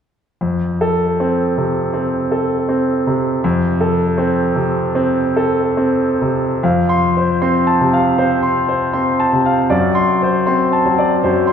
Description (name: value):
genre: classical, romantic character piece for solo piano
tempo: 77 BPM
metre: 4/4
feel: uneven beats, rubato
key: F major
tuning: A4 = 440 Hz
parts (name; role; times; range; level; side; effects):
- bright concert grand piano; solo; 0.4-11.5 s; F2 to C6; -14 LUFS; equal; none
room: wet concert hall reverb, RT60 2.5 s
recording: recorded in a church or concert hall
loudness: -14 LUFS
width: side -7 dB against mid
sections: 0.4-6.6 A section; 6.6-11.5 B section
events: none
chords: 0.4 F; 9.7 D7/F#